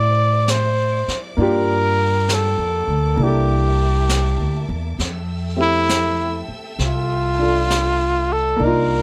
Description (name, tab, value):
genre	jazz ballad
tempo	66 BPM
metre	4/4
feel	swing 66% on 8ths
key	unclear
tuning	A4 = 440 Hz
part	breathy trumpet	melody	0.0-9.0 s	E4 to D5	-22 LUFS	equal	none
part	clear baby grand piano	accompaniment	0.0-9.0 s	A3 to E5	-26 LUFS	equal	none
part	dark studio string section	sustained chords	0.0-9.0 s	Bb3 to E6	-36 LUFS	equal	none
part	upright bass	bass	0.0-9.0 s	C2 to A2	-23 LUFS	equal	none
part	jazz brush drum kit	drums	0.5-9.0 s	brushed snare drum, hi-hat, snare drum	-30 LUFS	equal	none
room	little or no reverb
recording	close, detailed microphones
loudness	-19 LUFS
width	mono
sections	0.0-9.0 A section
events	none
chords	0.0 Dm9; 1.4 Gm7; 3.2 C13; 5.0 Fmaj9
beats	0.48 | 1.38 2.29 3.19 4.09 | 4.99 5.89 6.79 7.70 | 8.60